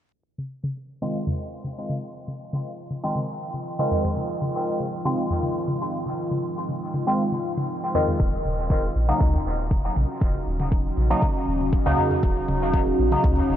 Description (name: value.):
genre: dub techno.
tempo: 119 BPM.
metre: 4/4.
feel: straight.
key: F phrygian.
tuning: A4 = 436 Hz.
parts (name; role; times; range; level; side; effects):
deep dark ambient pad; sustained chords; 2.6-13.6 s; Ab3 to Gb4; -29 LUFS; equal; chorus, built-in reverb, sidechain pumping.
electronic toms; percussion; 0.4-13.6 s; none; -30 LUFS; equal; sidechain pumping on toms, dub echo.
resonant sweep polysynth; stabs; 1.0-13.3 s; Db3 to F4; -26 LUFS; equal; chorus, phaser, sidechain pumping, dub echo.
soft dub sub bass; bass; 8.2-13.6 s; Eb1 to Db2; -25 LUFS; equal; sidechain pumping.
electronic kick drum; drums; 8.2-13.3 s; none; -23 LUFS; equal; none.
room: moderate huge ambient reverb, RT60 7.9 s.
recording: dreamy mix soaked in reverb, vinyl crackle, low-pass filter.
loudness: -22 LUFS.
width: side -10 dB against mid.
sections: 0.1-13.6 A section.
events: filter sweep on ambient pad 0.1-13.6; filter sweep 0.1-13.6.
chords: 0.1 Fm7; 8.2 Ebm7.